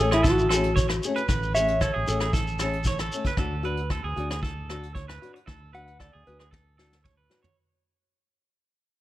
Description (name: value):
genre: highlife guitar band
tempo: 115 BPM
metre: 4/4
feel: straight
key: unclear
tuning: A4 = 436 Hz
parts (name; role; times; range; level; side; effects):
- mellow electric guitar; melody; 0.0-2.3, 5.7-6.4 s; E4 to F#5; -25 LUFS; equal; spring reverb
- flamenco guitar; accompaniment; 0.0-7.5 s; A3 to G#4; -32 LUFS; left 4 dB; none
- electric guitar through a small old amp; arpeggios; 0.0-7.6 s; G#4 to C#5; -31 LUFS; right 4 dB; tape echo
- fingered electric bass; bass; 0.0-7.3 s; A1 to D2; -30 LUFS; equal; none
- vintage brush drum kit; drums; 0.1-7.6 s; hi-hat, kick drum, rim click, snare drum, toms; -29 LUFS; equal; none
- shekere; percussion; 0.2-3.3 s; none; -32 LUFS; left 1 dB; none
room: light reverb, studio reverb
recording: none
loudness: -23 LUFS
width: side -15 dB against mid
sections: 0.0-7.6 A section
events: fade-out 0.0-7.6; clean electric guitar solo 0.0-7.6; drum fill 6.5-7.6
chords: 0.0 Amaj7; 3.4 D